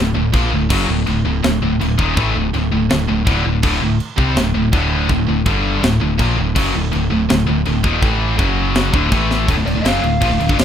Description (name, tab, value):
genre	heavy metal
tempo	164 BPM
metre	4/4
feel	straight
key	unclear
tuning	A4 = 439 Hz
part	distorted electric guitar	riff	0.0-10.6 s	D2 to C4	-27 LUFS	equal	none
part	high-gain distorted guitar	riff	0.0-10.6 s	D2 to C4	-19 LUFS	left 9 dB	distortion
part	scooped high-gain guitar	riff	0.0-10.6 s	D2 to C4	-21 LUFS	right 10 dB	distortion
part	deep dub picked electric bass	bass	0.0-10.6 s	D1 to C2	-20 LUFS	equal	none
part	tight metal drum kit	drums	0.3-10.6 s	china cymbal, crash cymbal, kick drum, snare drum	-20 LUFS	equal	none
part	lead guitar through a small cranked amp	melody	9.7-10.6 s	D5 to F5	-21 LUFS	left 1 dB	overdrive
room	light reverb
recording	rough home demo mix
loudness	-14 LUFS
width	side -9 dB against mid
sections	0.0-9.5 A section; 9.5-10.6 B section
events	half time 0.0-9.5; drum fill 9.3; lead electric guitar solo 9.5-10.6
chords	0.0 D; 5.5 G5; 5.8 D; 8.0 A5; 8.4 F#5; 8.9 D5; 9.1 A5; 9.5 D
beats	0.34 | 0.70 1.07 1.44 1.80 | 2.17 2.54 2.90 3.27 | 3.63 4.00 4.37 4.73 | 5.10 5.46 5.83 6.20 | 6.56 6.93 7.29 7.66 | 8.02 8.39 8.76 9.12 | 9.49 9.85 10.22 10.59